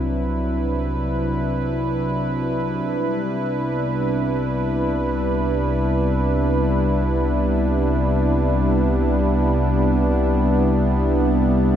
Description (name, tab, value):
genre	ambient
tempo	free time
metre	none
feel	none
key	C lydian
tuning	A4 = 440 Hz
part	warm analog pad	sustained chords	0.0-11.8 s	F#3 to B4	-20 LUFS	equal	chorus
part	round analog bass	bass	0.0-11.8 s	C2	-24 LUFS	equal	none
part	analog drone	drone	0.0-11.8 s	C3	-27 LUFS	equal	chorus
room	moderate plate reverb, RT60 2.9 s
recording	cassette tape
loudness	-18 LUFS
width	side -9 dB against mid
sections	0.0-11.8 A section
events	fade-in on analog synth pad 0.0-11.8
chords	0.0 D9/C; 2.8 Cmaj9